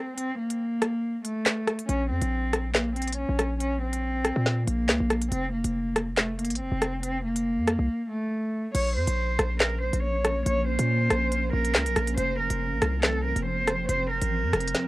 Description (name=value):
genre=hip hop, drill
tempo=140 BPM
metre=4/4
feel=half-time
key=Bb harmonic minor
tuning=A4 = 440 Hz
part: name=warm cello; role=melody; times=0.0-14.9 s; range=A3 to Db5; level=-28 LUFS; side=equal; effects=low-pass filter, cassette tape
part: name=drill drum kit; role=drums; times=0.2-14.9 s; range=crash cymbal, handclaps, hi-hat, rim click, snare drum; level=-26 LUFS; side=equal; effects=none
part: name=hard-hitting 808-style bass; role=bass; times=1.9-14.7 s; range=F1 to Bb2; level=-28 LUFS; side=equal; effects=none
part: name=granular cloud pad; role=sustained chords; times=9.6-14.9 s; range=F3 to Db4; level=-32 LUFS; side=right 1 dB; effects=built-in reverb
room=light reverb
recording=home recording on cassette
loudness=-24 LUFS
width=side -19 dB against mid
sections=0.0-8.7 A section; 8.7-14.9 B section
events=break 0.0-1.9, 7.9-8.7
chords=0.0 N.C.; 1.9 Bbm; 5.3 F; 8.7 Bbm; 12.2 F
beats=| 0.17 0.60 1.03 1.46 | 1.89 2.32 2.75 3.17 | 3.60 4.03 4.46 4.89 | 5.32 5.75 6.17 6.60 | 7.03 7.46 7.89 8.32 | 8.75 9.18 9.60 10.03 | 10.46 10.89 11.32 11.75 | 12.18 12.60 13.03 13.46 | 13.89 14.32 14.75